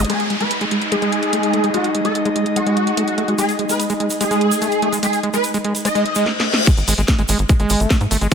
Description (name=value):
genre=psychedelic trance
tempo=146 BPM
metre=4/4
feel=straight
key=unclear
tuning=A4 = 439 Hz
part: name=swarming drone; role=sustained chords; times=0.0-8.3 s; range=G#3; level=-27 LUFS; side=left 2 dB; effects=built-in reverb, sidechain pumping
part: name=overdriven acid bass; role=riff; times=0.0-8.3 s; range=G#3 to A3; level=-22 LUFS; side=right 1 dB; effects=auto-pan, sidechain pumping, digital delay
part: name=tight sequencer bass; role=bass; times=0.0-0.1, 6.8-8.3 s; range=G#1 to G#2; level=-19 LUFS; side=equal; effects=none
part: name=garage drum kit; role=drums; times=0.0-8.3 s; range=crash cymbal, hi-hat, snare drum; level=-23 LUFS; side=equal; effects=none
part: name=zap, downlifter and reverse cymbal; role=sound effects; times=0.0-3.4, 6.1-6.7 s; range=none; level=-25 LUFS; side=left 2 dB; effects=none
part: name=swarming rave lead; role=melody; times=0.1-6.3 s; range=F#4 to D#5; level=-21 LUFS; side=equal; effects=chorus, phaser, sidechain pumping, tape echo
part: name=airy breathy pad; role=texture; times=0.4-6.3 s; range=D#4 to D#5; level=-24 LUFS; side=equal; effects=chorus, sidechain pumping
part: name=tube shaker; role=percussion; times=3.4-8.3 s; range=none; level=-27 LUFS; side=right 3 dB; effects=none
part: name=electronic kick drum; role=drums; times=6.7-8.3 s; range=none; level=-14 LUFS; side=equal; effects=none
room=moderate lush hall reverb, RT60 1.9 s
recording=none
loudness=-15 LUFS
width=side -7 dB against mid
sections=0.1-6.7 A section; 6.7-8.3 B section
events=filter sweep on acid bass 0.1-6.7; reverse cymbal 6.1-6.7; drum fill 6.3-6.7; drop 6.7-8.3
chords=0.1 G#5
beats=| 0.10 0.51 0.92 1.33 | 1.74 2.15 2.56 2.97 | 3.38 3.79 4.21 4.62 | 5.03 5.44 5.85 6.26 | 6.67 7.08 7.49 7.91 | 8.32